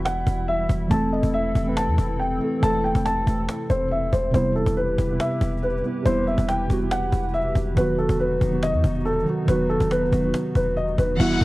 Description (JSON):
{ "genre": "hip hop, trap", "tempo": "140 BPM", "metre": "4/4", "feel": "half-time", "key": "unclear", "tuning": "A4 = 440 Hz", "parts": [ { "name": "dark concert grand piano", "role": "melody", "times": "0.0-11.4 s", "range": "A3 to A5", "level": "-25 LUFS", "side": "equal", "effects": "none" }, { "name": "muted felt-like synth keys", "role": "accompaniment", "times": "0.0-11.4 s", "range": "C3 to B4", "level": "-25 LUFS", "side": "right 2 dB", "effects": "chorus" }, { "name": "hollow soft pad", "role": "sustained chords", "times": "0.0-11.4 s", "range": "C3 to F#5", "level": "-32 LUFS", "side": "left 2 dB", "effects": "chorus" }, { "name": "warm 808-style bass", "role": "bass", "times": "0.0-11.4 s", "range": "E1 to E2", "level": "-25 LUFS", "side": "equal", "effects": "none" }, { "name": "cajon", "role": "drums", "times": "0.1-11.4 s", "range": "none", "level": "-30 LUFS", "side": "equal", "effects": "none" }, { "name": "warm symphonic violin section", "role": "second line", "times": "11.2-11.4 s", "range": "F#5", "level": "-26 LUFS", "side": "left 2 dB", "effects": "none" }, { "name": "downlifter", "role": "sound effects", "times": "11.2-11.4 s", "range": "none", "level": "-30 LUFS", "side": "left 3 dB", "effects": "none" } ], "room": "small room ambience", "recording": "worn, warbling old tape, cassette tape, warbly pitch drift", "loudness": "-20 LUFS", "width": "side -19 dB against mid", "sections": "0.0-11.2 A section", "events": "break 0.0-4.3", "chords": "0.0 Emadd9; 0.9 Am/E; 4.3 Cmaj7/E; 7.8 B/E" }